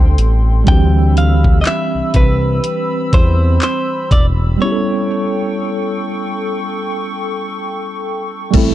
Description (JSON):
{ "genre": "contemporary R&B", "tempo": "61 BPM", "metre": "4/4", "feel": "swing 58% on 16ths", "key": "unclear", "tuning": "A4 = 441 Hz", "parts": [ { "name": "tine electric piano", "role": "accompaniment", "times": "0.0-8.7 s", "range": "E3 to A4", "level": "-20 LUFS", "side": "right 2 dB", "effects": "overdrive, fast stereo tremolo" }, { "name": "hollow soft pad", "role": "sustained chords", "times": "0.0-8.7 s", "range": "C4 to E6", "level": "-23 LUFS", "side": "left 1 dB", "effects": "chorus" }, { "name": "smooth synth bass", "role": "bass", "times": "0.0-8.7 s", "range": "E1 to E2", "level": "-13 LUFS", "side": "equal", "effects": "none" }, { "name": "mallet-like synth pluck", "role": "texture", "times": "0.0-1.4, 8.5-8.7 s", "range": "G4 to C5", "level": "-31 LUFS", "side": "left 4 dB", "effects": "none" }, { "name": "smooth R&B drum kit", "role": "drums", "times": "0.2-8.7 s", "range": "crash cymbal, handclaps, hi-hat, kick drum", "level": "-13 LUFS", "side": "equal", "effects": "vintage 12-bit sampler grit" }, { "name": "direct-recorded clean electric guitar", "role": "melody", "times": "0.7-7.5 s", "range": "B4 to G5", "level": "-21 LUFS", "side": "equal", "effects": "none" } ], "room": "little or no reverb", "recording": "dark, warm production", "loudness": "-13 LUFS", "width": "side -13 dB against mid", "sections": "0.0-8.5 A section", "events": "break 4.6-8.5", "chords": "0.0 G9sus4; 0.7 Cmaj7; 4.6 A7" }